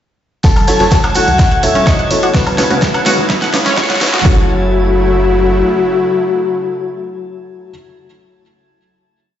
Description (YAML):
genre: progressive house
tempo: 126 BPM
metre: 4/4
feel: straight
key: F# minor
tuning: A4 = 440 Hz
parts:
  - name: soft octave-layered synth lead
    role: melody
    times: 0.4-7.7 s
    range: F#4 to A5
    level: -16 LUFS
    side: left 3 dB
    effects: chorus, vintage 12-bit sampler grit, digital delay
  - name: supersaw pad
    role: sustained chords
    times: 0.4-7.7 s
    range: C#3 to E4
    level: -22 LUFS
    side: equal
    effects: sidechain pumping, low-pass filter
  - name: analog pluck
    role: arpeggios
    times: 0.4-4.5 s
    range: C#4 to F#5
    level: -19 LUFS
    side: equal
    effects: lush chorus, cassette tape, sidechain pumping, digital delay
  - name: tight sequencer bass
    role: bass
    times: 0.4-5.6 s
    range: E1 to C#2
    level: -19 LUFS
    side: equal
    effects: tube saturation, sidechain pumping
  - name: crunchy breakbeat drum kit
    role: drums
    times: 0.4-4.1 s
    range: hi-hat, snare drum, tambourine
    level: -28 LUFS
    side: equal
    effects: none
  - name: deep house drum kit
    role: drums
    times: 0.4-4.4 s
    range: hi-hat, kick drum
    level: -12 LUFS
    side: equal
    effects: overdrive, studio reverb
  - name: deep house drum kit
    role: drums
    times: 0.4-4.3 s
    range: hi-hat, snare drum, woodblock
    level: -18 LUFS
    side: equal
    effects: overdrive, studio reverb
  - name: tambourine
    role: percussion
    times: 0.4-4.2 s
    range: none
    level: -27 LUFS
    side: right 4 dB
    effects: none
  - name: riser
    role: sound effects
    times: 2.0-4.2 s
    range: none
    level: -25 LUFS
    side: equal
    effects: none
  - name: drifting glass-harmonics texture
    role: texture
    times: 0.7-4.3 s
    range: A5 to G#6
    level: -27 LUFS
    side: left 1 dB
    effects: chorus, built-in reverb, sidechain pumping
  - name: congas and woodblock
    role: percussion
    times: 0.6-4.2 s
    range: none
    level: -26 LUFS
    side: right 2 dB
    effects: none
  - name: felt-muted upright piano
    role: stabs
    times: 0.7-7.7 s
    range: C#3 to C#5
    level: -20 LUFS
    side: right 1 dB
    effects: sidechain pumping, digital delay
room: moderate lush hall reverb, RT60 1.6 s, small room ambience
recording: played on a big sound system in a bare room, stone room reverb, high-pass filter, nothing above 7.8 kHz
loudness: -10 LUFS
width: side -10 dB against mid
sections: 0.4-4.2 build; 4.2-8.1 final chord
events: build-up 0.4-4.2; drum fill 0.4-4.2; filter sweep on synth pluck 0.4-4.2; filter sweep 0.4-4.2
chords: 0.4 F#m7; 2.3 C#m7; 4.2 F#m7